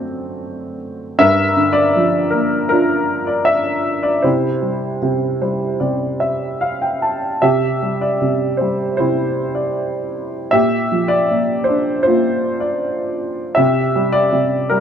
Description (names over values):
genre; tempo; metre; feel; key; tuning
classical, lyrical solo piano; 78 BPM; 4/4; rubato; unclear; A4 = 441 Hz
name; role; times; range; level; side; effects
warm upright piano; solo; 0.0-14.8 s; F#2 to A5; -15 LUFS; equal; none
room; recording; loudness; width
moderate plate reverb, RT60 3.1 s; heard from further back in the room; -15 LUFS; side -8 dB against mid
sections
0.0-14.8 A section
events
upright piano fill 5.0-7.4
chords
0.0 D7/F#; 1.2 Gm7; 4.2 C; 10.5 Gm7/Bb; 13.6 C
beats
0.44 | 1.19 1.96 2.72 3.48 | 4.25 5.02 5.80 6.61 | 7.42 8.21 8.99 9.76 | 10.54 11.31 12.08 12.85 | 13.59 14.33